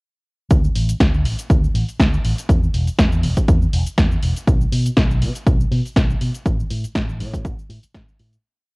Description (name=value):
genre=nu-disco, nu disco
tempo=121 BPM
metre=4/4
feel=swing 55% on 16ths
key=unclear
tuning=A4 = 440 Hz
part: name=fingered electric bass with an envelope filter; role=bass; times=0.5-8.4 s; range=E1 to B2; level=-20 LUFS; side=equal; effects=sidechain pumping
part: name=electronic kick drum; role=drums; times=0.5-8.1 s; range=none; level=-17 LUFS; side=equal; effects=studio reverb
part: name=house drum kit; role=drums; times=0.5-8.4 s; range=hi-hat, shaker, snare drum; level=-24 LUFS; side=equal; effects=studio reverb
room=digital ambience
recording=home recording on cassette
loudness=-16 LUFS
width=side -31 dB against mid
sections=0.5-8.4 drop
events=drop 0.5-8.4; fade-out 5.8-8.4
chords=none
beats=| 0.51 1.00 1.50 2.00 | 2.49 2.99 3.48 3.98 | 4.47 4.97 5.47 5.96 | 6.46 6.95 7.45 7.95